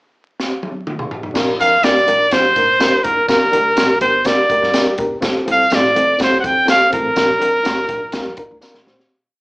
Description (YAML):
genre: uptempo 1960s-style soul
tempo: 124 BPM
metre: 4/4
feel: straight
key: Bb major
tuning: A4 = 439 Hz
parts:
  - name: compact cocktail drum kit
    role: drums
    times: 0.4-9.1 s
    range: crash cymbal, hi-hat, kick drum, snare drum, toms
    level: -19 LUFS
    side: equal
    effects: none
  - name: reed electric piano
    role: accompaniment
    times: 1.3-9.1 s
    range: G2 to C5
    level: -21 LUFS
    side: left 1 dB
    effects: fast tremolo
  - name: upright bass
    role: bass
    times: 1.4-9.0 s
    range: E1 to Bb2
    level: -30 LUFS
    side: equal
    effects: none
  - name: tambourine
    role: percussion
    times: 1.4-8.7 s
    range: none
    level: -31 LUFS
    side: right 1 dB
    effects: none
  - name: bright trumpet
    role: melody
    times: 1.6-8.6 s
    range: Bb4 to G5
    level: -13 LUFS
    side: equal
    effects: none
room: light reverb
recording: band playing live in one room, vinyl crackle, small speaker sound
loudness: -13 LUFS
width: side -27 dB against mid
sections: 0.0-1.3 pickup bar; 1.3-9.1 A section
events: drum fill 0.4-1.3, 8.6-9.1; fade-out 7.2-9.1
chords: 0.0 N.C.; 1.3 Bb; 3.3 Gm; 5.2 F; 7.2 Bb